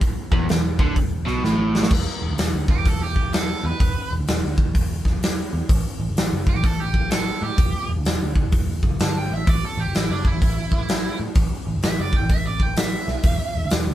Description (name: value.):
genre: blues rock power trio and southern rock.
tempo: 127 BPM.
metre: 4/4.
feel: swing 64% on 8ths.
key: E minor.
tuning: A4 = 440 Hz.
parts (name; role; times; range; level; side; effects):
big rock drum kit; drums; 0.0-13.9 s; crash cymbal, hi-hat, kick drum, snare drum; -21 LUFS; equal; none.
overdriven electric guitar; riff; 0.3-1.9 s; E2 to D3; -22 LUFS; right 1 dB; none.
vintage muted picked electric bass; bass; 0.3-13.9 s; E1 to A2; -25 LUFS; equal; none.
biting lead guitar; second line; 2.7-13.7 s; D4 to A5; -28 LUFS; right 4 dB; overdrive.
room: light reverb.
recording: band playing live in one room, lossy compression artefacts.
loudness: -19 LUFS.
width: side -13 dB against mid.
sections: 0.0-1.9 A section; 1.9-13.9 B section.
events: drum fill 1.4-1.9; lead electric guitar solo 1.9-13.9.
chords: 0.0 E5; 5.7 F#m; 7.6 Em; 9.5 A5; 13.2 N.C..